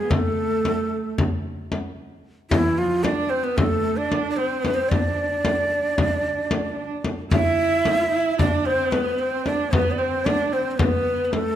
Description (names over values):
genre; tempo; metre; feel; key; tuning
Turkish makam ensemble; 225 BPM (eighths); 9/8; straight; D makam nikriz; A4 = 440 Hz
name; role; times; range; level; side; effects
breathy bright ney; melody; 0.0-11.6 s; E4 to E5; -23 LUFS; left 1 dB; none
dark viola; second line; 0.0-11.6 s; E3 to E4; -26 LUFS; right 6 dB; none
frame drum; percussion; 0.1-11.4 s; none; -24 LUFS; left 2 dB; none
room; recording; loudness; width
moderate recital hall reverb, RT60 1.7 s; dark, warm production; -20 LUFS; side -10 dB against mid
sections
0.0-7.3 A section; 7.3-11.6 B section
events
none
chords
none